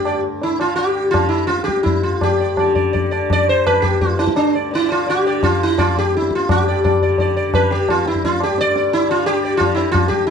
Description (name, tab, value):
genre	indian classical, Hindustani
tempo	170 BPM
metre	3/4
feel	straight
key	unclear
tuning	A4 = 438 Hz
part	sitar	melody	0.0-10.3 s	D4 to D5	-16 LUFS	equal	plate reverb
part	tanpura	drone	0.0-10.3 s	D2 to D3	-27 LUFS	equal	none
part	tabla	percussion	0.1-10.3 s	none	-20 LUFS	left 1 dB	none
room	wet studio reverb, RT60 0.6 s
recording	dark, warm production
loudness	-15 LUFS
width	side -7 dB against mid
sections	0.0-6.5 A section; 6.5-10.3 B section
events	speeding up 0.0-10.3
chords	none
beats	| 0.05 0.42 0.78 | 1.14 1.50 1.86 | 2.22 2.58 2.94 | 3.30 3.65 4.01 | 4.37 4.72 5.07 | 5.43 5.78 6.13 | 6.48 6.83 7.18 | 7.53 7.88 8.23 | 8.58 8.92 9.27 | 9.62 9.96